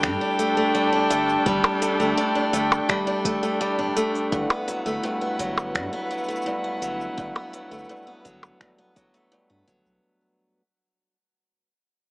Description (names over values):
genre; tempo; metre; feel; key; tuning
folktronica; 84 BPM; 4/4; straight; G major; A4 = 440 Hz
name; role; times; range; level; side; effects
muted string quartet; sustained chords; 0.0-10.0 s; D4 to G5; -26 LUFS; equal; none
picked steel-string acoustic guitar; arpeggios; 0.0-10.6 s; G2 to D4; -25 LUFS; equal; tape echo
round analog bass; bass; 0.0-10.0 s; D1 to G2; -37 LUFS; equal; none
electronic kick drum; drums; 0.0-9.8 s; none; -32 LUFS; equal; none
minimal click drum kit; drums; 0.0-10.0 s; finger snaps, hi-hat, percussion blips, shaker; -25 LUFS; equal; none
room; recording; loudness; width
moderate studio reverb, RT60 0.6 s; small speaker sound; -21 LUFS; side -30 dB against mid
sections
0.0-10.0 A section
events
fade-out 2.4-10.0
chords
0.0 A7sus4/G; 4.3 Gmaj13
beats
0.03 0.75 | 1.46 2.18 2.89 3.61 | 4.32 5.03 5.75 6.46 | 7.18 7.89 8.61 9.32